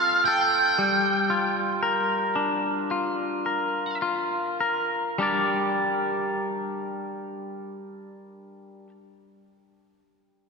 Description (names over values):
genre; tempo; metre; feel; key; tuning
rock; 50-60 BPM; 4/4; straight; G minor; A4 = 440 Hz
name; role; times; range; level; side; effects
octave-fuzz lead guitar; melody; 0.0-4.0 s; F5 to G5; -24 LUFS; right 2 dB; distortion
twangy electric guitar; arpeggios; 0.0-8.9 s; G3 to D5; -25 LUFS; left 1 dB; none
room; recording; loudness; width
wet cathedral reverb, RT60 4.1 s; recorded in a church or concert hall; -23 LUFS; side -4 dB against mid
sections
0.0-5.2 A section; 5.2-10.0 B section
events
slowing down 0.0-5.2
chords
0.0 F; 0.8 Bb6/G; 5.2 Gm